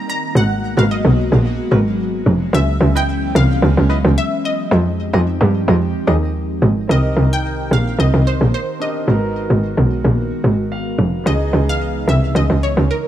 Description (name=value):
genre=amapiano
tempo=110 BPM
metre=4/4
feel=swing 55% on 16ths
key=unclear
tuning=A4 = 441 Hz
part: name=analog pluck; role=melody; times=0.0-13.1 s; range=Bb4 to Bb5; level=-24 LUFS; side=equal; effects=chorus, digital delay
part: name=airy breathy pad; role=sustained chords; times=0.0-13.1 s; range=Db3 to Bb4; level=-23 LUFS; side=equal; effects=chorus
part: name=tight log drum bass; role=bass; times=0.4-12.9 s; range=F1 to G2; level=-14 LUFS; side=equal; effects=none
part: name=percussive organ stab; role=stabs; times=0.8-6.2 s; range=Fb4 to Eb5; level=-29 LUFS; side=right 1 dB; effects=chorus, phaser, digital delay
part: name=clear baby grand piano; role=accompaniment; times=6.9-13.1 s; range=Fb3 to F5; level=-28 LUFS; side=right 2 dB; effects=none
room=little or no reverb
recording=small room ambience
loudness=-14 LUFS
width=side -11 dB against mid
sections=0.0-6.9 A section; 6.9-13.1 B section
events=drop 0.0-6.9; grand piano fill 10.4-11.3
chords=0.3 Abm9; 2.5 Dbm9; 4.7 Fm9; 6.9 Cm9; 9.1 Abm9; 11.3 Dbm9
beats=| 0.35 0.89 1.44 1.99 | 2.53 3.08 3.62 4.17 | 4.71 5.26 5.80 6.35 | 6.89 7.44 7.99 8.53 | 9.08 9.62 10.17 10.71 | 11.26 11.80 12.35 12.89